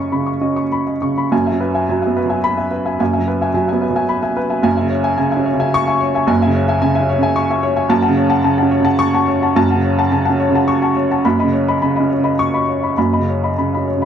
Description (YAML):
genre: neoclassical minimalist piano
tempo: 98-112 BPM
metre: 3/4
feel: rubato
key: unclear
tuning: A4 = 440 Hz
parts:
  - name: warm upright piano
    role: solo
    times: 0.0-14.1 s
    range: F#1 to C#6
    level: -14 LUFS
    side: equal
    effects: none
room: small room ambience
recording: dry, close 1970s-style studio recording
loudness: -14 LUFS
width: side -8 dB against mid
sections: 0.0-1.3 A section; 1.3-14.1 B section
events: none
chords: 0.0 Badd9/F#; 1.3 Eadd9/F#; 4.7 C#m/F#; 7.9 F#m; 11.2 Badd9/F#